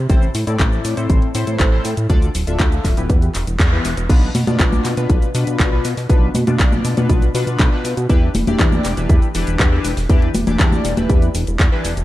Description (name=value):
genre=italo disco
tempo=120 BPM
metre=4/4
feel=straight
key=unclear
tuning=A4 = 441 Hz
part: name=chorused synth bass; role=bass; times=0.0-12.0 s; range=D1 to B2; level=-20 LUFS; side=equal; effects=none
part: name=chorused polysynth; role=stabs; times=0.1-11.9 s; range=A2 to E5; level=-23 LUFS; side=left 3 dB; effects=phaser, tape echo
part: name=electronic kick drum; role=drums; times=0.1-11.7 s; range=none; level=-15 LUFS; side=equal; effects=none
part: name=house drum kit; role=drums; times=0.1-12.0 s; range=cabasa, congas, crash cymbal, handclaps, hi-hat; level=-22 LUFS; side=equal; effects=none
room=light reverb, digital ambience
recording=dark, warm production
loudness=-14 LUFS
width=side -15 dB against mid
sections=0.0-4.1 A section; 4.1-12.0 B section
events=band accent 3.6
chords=0.1 Am; 2.1 Dm; 3.1 Em; 4.1 Bdim; 8.1 Em7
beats=| 0.10 0.60 1.10 1.60 | 2.10 2.60 3.10 3.60 | 4.10 4.60 5.10 5.60 | 6.10 6.60 7.10 7.60 | 8.10 8.60 9.10 9.60 | 10.10 10.60 11.10 11.60